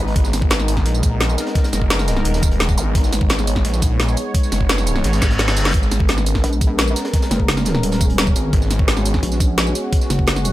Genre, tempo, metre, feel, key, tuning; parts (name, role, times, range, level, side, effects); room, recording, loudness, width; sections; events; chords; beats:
dark technical drum and bass; 172 BPM; 4/4; straight; G# minor; A4 = 440 Hz
sweeping resonant pad; sustained chords; 0.0-10.5 s; G#3 to C#5; -24 LUFS; equal; chorus, vintage 12-bit sampler grit, sidechain pumping
snarling distorted saw bass; bass; 0.0-6.4, 8.5-9.2 s; D#1 to A#1; -19 LUFS; equal; distortion, overdrive, sidechain pumping
zap and reverse cymbal; sound effects; 0.0-0.1, 2.8-2.9, 5.1-5.7 s; -28 LUFS; equal
crunchy breakbeat drum kit; drums; 0.1-10.5 s; hi-hat, snare drum; -33 LUFS; equal
drum and bass drum kit; drums; 0.2-10.5 s; hi-hat, snare drum, tambourine; -21 LUFS; equal; overdrive, studio reverb
electronic kick drum; drums; 0.2-10.3 s; -18 LUFS; equal; overdrive, studio reverb
pulsing pluck wobble bass; bass; 6.4-10.5 s; D#1 to A#1; -20 LUFS; equal; chorus
little or no reverb; -15 LUFS; side -15 dB against mid
0.0-10.5 A section
reverse cymbal 5.1-5.7; drum fill 5.2-5.7; kick drops out 5.4-5.7
0.0 G#madd9
| 0.16 0.51 0.86 1.21 | 1.55 1.90 2.25 2.60 | 2.95 3.30 3.65 4.00 | 4.34 4.69 5.04 5.39 | 5.74 6.09 6.44 6.79 | 7.14 7.48 7.83 8.18 | 8.53 8.88 9.23 9.58 | 9.93 10.28